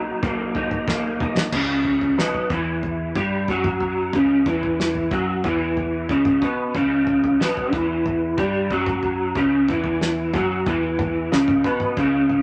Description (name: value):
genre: psychedelic rock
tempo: 92 BPM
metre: 4/4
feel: straight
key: C# dorian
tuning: A4 = 440 Hz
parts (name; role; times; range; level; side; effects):
- electric guitar through a small old amp; riff; 0.0-12.4 s; B2 to B4; -23 LUFS; equal; rotary speaker
- overdriven picked electric bass; bass; 0.0-12.4 s; B1 to B2; -30 LUFS; equal; none
- cloth-damped thuddy drum kit; drums; 0.2-12.4 s; crash cymbal, kick drum, snare drum, toms; -29 LUFS; equal; none
room: light reverb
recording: none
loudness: -21 LUFS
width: mono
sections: 0.0-1.5 A section; 1.5-12.4 B section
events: drum fill 0.9-1.5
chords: 0.0 Bmaj7; 1.5 C#m